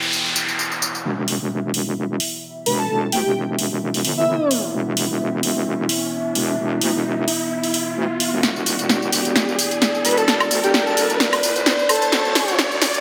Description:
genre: bass house.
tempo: 130 BPM.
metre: 4/4.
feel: swing 55% on 16ths.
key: E minor.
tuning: A4 = 439 Hz.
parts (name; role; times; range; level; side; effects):
dark analog pad; sustained chords; 0.0-13.0 s; B3 to G5; -28 LUFS; equal; chorus.
house drum kit; drums; 0.0-13.0 s; hi-hat, snare drum, tambourine, woodblock; -23 LUFS; equal; none.
noise sweep and riser; sound effects; 0.0-13.0 s; none; -28 LUFS; equal; none.
wobble bass; bass; 1.0-13.0 s; E1 to D2; -26 LUFS; equal; chorus, overdrive, high-pass filter.
airy dreamy lead; melody; 2.7-4.5, 10.0-12.5 s; E4 to B4; -24 LUFS; equal; chorus, dub echo.
room: moderate digital room reverb, RT60 1.2 s.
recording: high-pass filter.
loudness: -20 LUFS.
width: mono.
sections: 0.0-1.0 A section; 1.0-13.0 B section.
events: noise sweep 0.0-1.0; filter sweep on analog synth pad 0.0-1.0; build-up 1.0-13.0; riser 1.0-13.0; drum fill 8.4-13.0.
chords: 0.0 E5.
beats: 0.12 0.59 | 1.05 1.51 1.97 2.43 | 2.89 3.35 3.82 4.28 | 4.74 5.20 5.66 6.12 | 6.59 7.05 7.51 7.97 | 8.43 8.89 9.36 9.82 | 10.28 10.74 11.20 11.66 | 12.12 12.59.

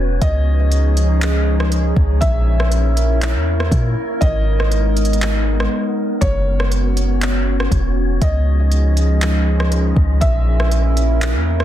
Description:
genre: hip hop, atmospheric cloud-rap.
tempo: 120 BPM.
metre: 4/4.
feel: half-time.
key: unclear.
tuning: A4 = 441 Hz.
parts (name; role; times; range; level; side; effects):
felt-muted upright piano; melody; 0.0-11.6 s; C#5 to E5; -26 LUFS; equal; ping-pong delay.
warbly tape-like pad; sustained chords; 0.0-11.6 s; E#3 to B4; -22 LUFS; equal; chorus, built-in reverb, sidechain pumping.
warm 808-style bass; bass; 0.0-11.6 s; E1 to A#2; -16 LUFS; equal; none.
wind-like tuned noise texture; texture; 0.0-11.6 s; E#3 to D#5; -30 LUFS; left 2 dB; built-in reverb.
smooth R&B drum kit; drums; 0.2-11.6 s; handclaps, hi-hat, kick drum, rim click; -21 LUFS; equal; none.
room: little or no reverb.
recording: dense, heavily limited modern master.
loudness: -14 LUFS.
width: side -12 dB against mid.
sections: 0.0-11.6 A section.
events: break 5.7-6.2.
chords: 0.2 C#add9; 2.2 A#dim; 4.2 G#madd9; 6.2 F#sus4; 8.2 C#add9; 10.2 A#dim.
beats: | 0.22 0.72 1.22 1.72 | 2.22 2.72 3.22 3.72 | 4.22 4.72 5.22 5.72 | 6.22 6.72 7.22 7.72 | 8.22 8.72 9.22 9.72 | 10.22 10.72 11.22.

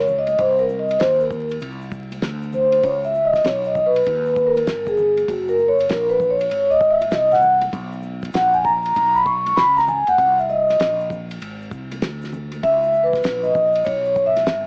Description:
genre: hip hop, jazz-hop.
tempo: 98 BPM.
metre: 4/4.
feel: swing 65% on 16ths.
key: C# dorian.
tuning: A4 = 441 Hz.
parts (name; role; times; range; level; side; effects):
vibraphone with soft mallets; accompaniment; 0.0-14.5 s; F#4 to C#6; -18 LUFS; equal; cassette tape.
mellow fretless electric bass; bass; 0.0-14.7 s; F#1 to Eb2; -34 LUFS; equal; none.
congas and egg shaker; percussion; 0.1-14.6 s; none; -43 LUFS; equal; none.
cloth-damped thuddy drum kit; drums; 0.3-14.7 s; hi-hat, kick drum, ride cymbal, snare drum; -33 LUFS; equal; none.
room: light reverb.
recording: home recording on cassette, vinyl crackle, small speaker sound.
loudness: -18 LUFS.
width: mono.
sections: 0.0-14.7 A section.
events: vibraphone solo 0.0-14.7.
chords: 0.4 Cm7; 2.2 Csus2/D; 2.8 C#sus2; 5.3 F#add9; 7.7 Bsus2; 10.2 G#add9; 12.0 N.C.; 12.6 D#7(no3).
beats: | 0.39 1.00 1.61 2.22 | 2.83 3.45 4.06 4.67 | 5.28 5.89 6.51 7.12 | 7.73 8.34 8.96 9.57 | 10.18 10.79 11.40 12.02 | 12.63 13.24 13.85 14.47.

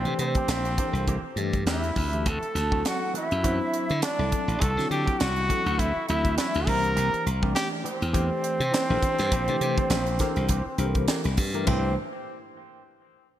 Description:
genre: electric jazz fusion.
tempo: 102 BPM.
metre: 4/4.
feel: swing 56% on 16ths.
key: C mixolydian.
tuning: A4 = 439 Hz.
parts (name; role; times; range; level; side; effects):
mellow trumpet; melody; 0.0-11.9 s; C4 to Bb4; -29 LUFS; equal; none.
breathy mellow silver concert flute; second line; 0.0-11.9 s; C5 to Bb5; -34 LUFS; right 3 dB; none.
electric guitar with an envelope filter; stabs; 0.0-11.9 s; E3 to G4; -39 LUFS; right 4 dB; lush chorus, ping-pong delay.
glassy slap bass; bass; 0.0-11.9 s; A1 to D3; -27 LUFS; equal; none.
tine electric piano; accompaniment; 0.1-11.9 s; E3 to D5; -32 LUFS; left 2 dB; medium stereo tremolo, analog chorus.
crisp fusion drum kit; drums; 0.1-11.8 s; hi-hat, kick drum, snare drum, splash cymbal, toms; -28 LUFS; equal; gated reverb.
room: moderate lush hall reverb, RT60 2.1 s.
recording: bright 1980s-style digital production.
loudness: -23 LUFS.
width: side -12 dB against mid.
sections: 0.0-11.7 A section; 11.7-13.4 B section.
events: none.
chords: 0.0 C7; 2.3 D9; 6.7 C7.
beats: 0.49 1.08 1.67 | 2.25 2.84 3.43 4.02 | 4.61 5.20 5.79 6.38 | 6.96 7.55 8.14 8.73 | 9.32 9.91 10.50 11.09 | 11.67.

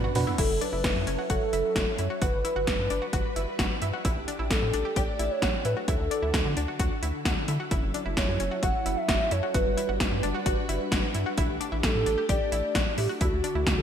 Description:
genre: synth-pop.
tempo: 131 BPM.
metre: 4/4.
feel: straight.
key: unclear.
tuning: A4 = 441 Hz.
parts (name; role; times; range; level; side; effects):
ensemble organ-string; sustained chords; 0.0-13.8 s; D3 to B4; -34 LUFS; equal; phaser, ensemble chorus.
analog pluck; arpeggios; 0.0-13.7 s; C#4 to G4; -34 LUFS; left 2 dB; chorus, ping-pong delay.
rubbery square bass; bass; 0.0-13.8 s; F#1 to D3; -31 LUFS; equal; none.
80s electronic pad drums; drums; 0.2-13.8 s; crash cymbal, hi-hat, kick drum, snare drum, toms; -28 LUFS; equal; gated reverb on snare and toms, gated reverb.
hollow clarinet-like synth lead; melody; 0.4-13.8 s; F#4 to F#5; -30 LUFS; right 1 dB; chorus, ping-pong delay.
room: moderate lush hall reverb, RT60 1.9 s, digital ambience.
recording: bright 1980s-style digital production.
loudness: -24 LUFS.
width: side -8 dB against mid.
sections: 0.4-13.8 A section.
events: drum fill 0.0-0.4.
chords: 0.4 F#m7; 2.2 Gmaj7; 4.0 A7sus4; 5.9 D; 7.7 F#m7; 9.5 Gmaj7; 11.4 A7sus4; 13.2 D.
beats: | 0.38 0.84 1.30 1.76 | 2.22 2.67 3.13 3.59 | 4.05 4.51 4.96 5.42 | 5.88 6.34 6.80 7.25 | 7.71 8.17 8.63 9.09 | 9.54 10.00 10.46 10.92 | 11.38 11.84 12.29 12.75 | 13.21 13.67.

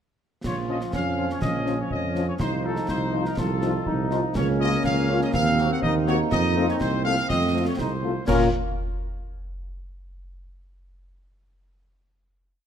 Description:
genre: military-style march for wind band.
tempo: 123 BPM.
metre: 2/4.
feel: straight.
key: Bb minor.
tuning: A4 = 441 Hz.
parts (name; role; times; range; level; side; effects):
warm trombone section; sustained chords; 0.4-8.5 s; F3 to Eb4; -31 LUFS; right 2 dB; none.
mellow tuba; bass; 0.4-8.5 s; Bb1 to Bb2; -26 LUFS; right 4 dB; none.
concert snare drum, clash cymbals and concert bass drum; drums; 0.4-8.5 s; none; -32 LUFS; equal; none.
clear trumpet section; melody; 0.5-8.5 s; A4 to Gb5; -29 LUFS; equal; none.
mellow woodwind section; second line; 0.5-8.5 s; C4 to Db5; -29 LUFS; left 2 dB; none.
warm French horn section; accompaniment; 0.7-8.5 s; F3 to Gb4; -29 LUFS; left 6 dB; none.
room: light reverb.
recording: close, detailed microphones.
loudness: -21 LUFS.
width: side -8 dB against mid.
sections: 0.4-8.3 A section; 8.3-9.3 final chord.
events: none.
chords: 0.4 Bbm; 2.4 F7/C; 4.4 Bbm/Db; 5.3 Cm7b5/Eb; 6.3 F7; 8.3 Bbm.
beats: | 0.45 0.94 | 1.42 1.91 | 2.40 2.89 | 3.38 3.87 | 4.36 4.85 | 5.34 5.83 | 6.32 6.81 | 7.30 7.79 | 8.28.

